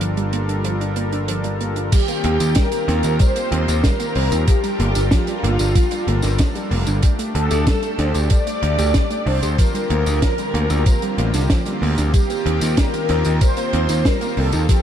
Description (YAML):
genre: synthwave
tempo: 94 BPM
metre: 4/4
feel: straight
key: unclear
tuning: A4 = 444 Hz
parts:
  - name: soft supersaw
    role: sustained chords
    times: 0.0-14.8 s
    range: D3 to Bb4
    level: -26 LUFS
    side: equal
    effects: sidechain pumping, shimmer reverb
  - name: wide unison pluck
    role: arpeggios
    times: 0.0-14.8 s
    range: F3 to G4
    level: -27 LUFS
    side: right 3 dB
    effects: digital delay, shimmer reverb
  - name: modern bright picked electric bass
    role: bass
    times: 0.0-14.7 s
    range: F1 to Eb2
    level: -19 LUFS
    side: equal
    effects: sidechain pumping
  - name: compact cocktail drum kit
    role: drums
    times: 0.0-14.8 s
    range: crash cymbal, hi-hat, snare drum, tambourine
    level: -26 LUFS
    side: right 1 dB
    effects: none
  - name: mellow synth brass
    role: melody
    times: 1.9-14.8 s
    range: F4 to D5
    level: -25 LUFS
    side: left 1 dB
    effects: chorus, digital delay, shimmer reverb
  - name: string machine, violins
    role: second line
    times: 1.9-14.8 s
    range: F4 to D5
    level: -28 LUFS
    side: equal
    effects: ensemble chorus, digital delay, shimmer reverb
  - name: electronic kick drum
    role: drums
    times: 1.9-14.8 s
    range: none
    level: -16 LUFS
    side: equal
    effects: none
room: light reverb, small room ambience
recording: dark, warm production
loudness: -16 LUFS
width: side -10 dB against mid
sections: 0.0-1.9 A section; 1.9-14.8 B section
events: none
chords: 0.0 Gm7; 1.9 Eb6; 4.5 Gm7; 7.0 Dsus4; 9.6 Bb6/D; 12.1 Eb6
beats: 0.01 0.65 1.29 | 1.93 2.56 3.20 3.84 | 4.48 5.12 5.75 6.39 | 7.03 7.67 8.31 8.95 | 9.58 10.22 10.86 11.50 | 12.14 12.78 13.41 14.05 | 14.69